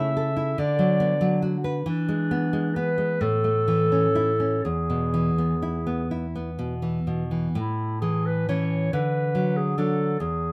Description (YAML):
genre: romantic duo for clarinet and classical guitar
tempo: 40-48 BPM (dotted quarters)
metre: 6/8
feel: rubato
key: A major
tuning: A4 = 440 Hz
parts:
  - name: warm clarinet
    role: melody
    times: 0.0-10.5 s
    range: D4 to E5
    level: -28 LUFS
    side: equal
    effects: none
  - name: nylon-string guitar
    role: accompaniment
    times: 0.0-10.5 s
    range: E2 to B4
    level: -26 LUFS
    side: equal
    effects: none
room: moderate studio reverb, RT60 0.6 s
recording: none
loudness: -25 LUFS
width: mono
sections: 0.0-7.6 A section; 7.6-10.5 A section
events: none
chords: 0.0 A/C#; 0.6 Bm/D; 1.9 E7; 3.2 A; 4.7 E; 7.6 A; 8.9 D